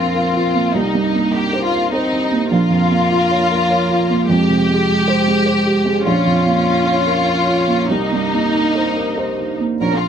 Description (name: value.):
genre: neoclassical piano and strings.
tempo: 93-103 BPM.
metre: 3/4.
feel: rubato.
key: Bb dorian.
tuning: A4 = 440 Hz.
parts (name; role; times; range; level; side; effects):
rich studio violin section; melody; 0.0-10.1 s; Eb4 to Bb4; -18 LUFS; left 2 dB; none.
rich cello; second line; 0.0-10.1 s; Ab3 to Db4; -22 LUFS; right 2 dB; slapback echo.
felt-muted upright piano; accompaniment; 0.0-10.1 s; Bb1 to Db5; -17 LUFS; right 2 dB; none.
room: light reverb.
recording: none.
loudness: -14 LUFS.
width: side -8 dB against mid.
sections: 0.0-9.8 A section.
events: none.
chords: 0.0 Bb5; 0.7 Cm7; 2.5 Bbm; 4.3 Fmadd9; 6.1 Bbm; 7.9 Cm7.